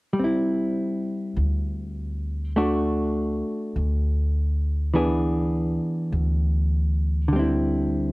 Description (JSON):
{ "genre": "jazz", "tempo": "51 BPM", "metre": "4/4", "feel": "swing 67% on 8ths", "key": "unclear", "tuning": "A4 = 440 Hz", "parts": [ { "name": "hollow-body jazz guitar", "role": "accompaniment", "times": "0.1-8.1 s", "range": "D3 to G#4", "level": "-24 LUFS", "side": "equal", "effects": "none" }, { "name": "upright bass", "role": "bass", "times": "1.4-8.1 s", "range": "D2", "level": "-24 LUFS", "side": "equal", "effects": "none" } ], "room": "light reverb", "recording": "none", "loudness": "-22 LUFS", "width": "side -22 dB against mid", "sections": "0.2-8.1 A section", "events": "none", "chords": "0.2 D9sus4; 2.6 D; 4.9 E7; 7.3 D9sus4" }